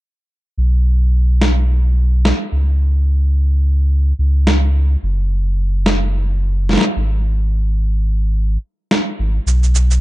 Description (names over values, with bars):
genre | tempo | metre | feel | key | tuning
folktronica | 108 BPM | 4/4 | swing 56% on 16ths | unclear | A4 = 440 Hz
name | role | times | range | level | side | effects
warm sub bass | bass | 0.6-10.0 s | F#1 to C#2 | -14 LUFS | equal | none
electronic snare drum and shaker | drums | 1.4-10.0 s | none | -18 LUFS | equal | none
room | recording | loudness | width
little or no reverb | dark, warm production, nothing above 10.5 kHz | -14 LUFS | side -17 dB against mid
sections
0.6-10.0 A section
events
filter sweep on sub bass 0.6-10.0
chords
none